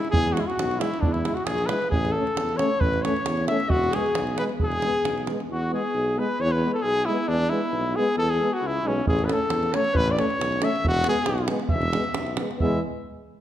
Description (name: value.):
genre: balkan folk, Balkan brass band.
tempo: 135 BPM.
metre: 2/4.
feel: swing 54% on 16ths.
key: E mixolydian.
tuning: A4 = 440 Hz.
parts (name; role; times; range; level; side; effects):
warm cornet; melody; 0.0-12.8 s; C#4 to E5; -26 LUFS; left 1 dB; none.
warm clarinet; second line; 0.0-12.8 s; C#4 to E5; -30 LUFS; left 3 dB; none.
davul; percussion; 0.0-5.5, 9.1-12.8 s; none; -28 LUFS; right 2 dB; none.
warm tuba; bass; 0.1-12.8 s; E1 to E2; -28 LUFS; equal; none.
warm euphonium; accompaniment; 0.3-12.8 s; G#3 to A3; -32 LUFS; right 3 dB; none.
clear French horn; accompaniment; 0.4-12.8 s; B3 to E4; -32 LUFS; left 4 dB; none.
room: wet recital hall reverb, RT60 1.4 s.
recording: none.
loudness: -22 LUFS.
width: side -11 dB against mid.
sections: 0.0-5.5 A section; 5.5-12.6 A section.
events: none.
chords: 0.0 E; 1.9 A; 3.7 E; 9.1 A; 10.8 E.